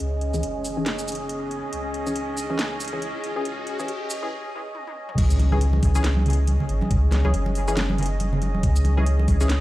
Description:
deep dubstep; 139 BPM; 4/4; swing 58% on 16ths, half-time; C# minor; A4 = 440 Hz
deep dark ambient pad; sustained chords; 0.0-9.6 s; C#4 to D#5; -30 LUFS; equal; chorus, built-in reverb
soft dub sub bass; bass; 0.0-9.6 s; D#1 to C#2; -22 LUFS; equal
garage drum kit; drums; 0.0-9.6 s; crash cymbal, hi-hat, shaker, snare drum, toms; -31 LUFS; equal
riser and impact; sound effects; 0.5-6.9 s; -36 LUFS; equal
filtered dub chord stab; stabs; 0.3-9.5 s; E3 to G#4; -31 LUFS; left 2 dB; chorus, dub echo
electronic kick drum; drums; 5.2-9.4 s; -22 LUFS; equal
congas; percussion; 5.4-9.4 s; -28 LUFS; right 2 dB; dub echo
little or no reverb; played on a big sound system in a bare room, large studio reverb, high-pass filter; -21 LUFS; side -16 dB against mid
0.0-5.2 A section; 5.2-9.6 B section
build-up 0.0-5.2; filter sweep on synth stab 0.0-5.2; riser 0.5-4.3; break 4.3-5.2; drum fill 4.7-5.2; drop 5.2-9.6; impact 5.2-6.9
0.0 C#m

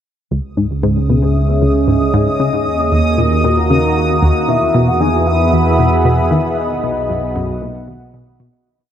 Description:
ambient, sequencer-driven space music; 115 BPM; 4/4; straight; A4 = 440 Hz
sweeping resonant pad; sustained chords; 0.7-8.7 s; B2 to B5; -17 LUFS; right 1 dB; chorus
tight sequenced synth; riff; 0.3-8.5 s; C#2 to D#3; -17 LUFS; left 1 dB; chorus, tape echo
analog drone; bass; 0.6-8.6 s; B1 to E2; -19 LUFS; equal; chorus
bubbling stepped-filter texture; texture; 1.3-8.7 s; D#6; -22 LUFS; equal; chorus, built-in reverb
soft octave-layered synth lead; melody; 4.5-8.1 s; D#5 to G#5; -18 LUFS; left 1 dB; chorus, tremolo, tape echo
wet huge ambient reverb, RT60 9.0 s; dark, warm production; -12 LUFS; side -9 dB against mid
0.3-8.7 A section
fade-out 5.9-8.7
0.3 C#madd9; 2.4 D#m; 4.5 E; 6.6 B

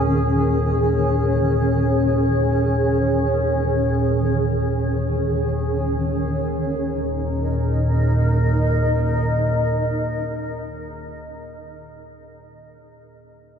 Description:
ambient; free time; A4 = 436 Hz
granular cloud pad; sustained chords; 0.0-11.6 s; Eb3 to Eb5; -22 LUFS; equal; built-in reverb
deep rumbling drone; drone; 0.0-11.2 s; Eb2 to Bb2; -22 LUFS; equal; built-in reverb
quartz singing bowl; texture; 0.0-6.4 s; Ab4; -39 LUFS; right 4 dB
wet huge ambient reverb, RT60 7.8 s; dreamy mix soaked in reverb, nothing above 10.6 kHz; -18 LUFS; side -7 dB against mid
0.0-6.4 A section; 6.4-11.2 B section
0.0 Eb5

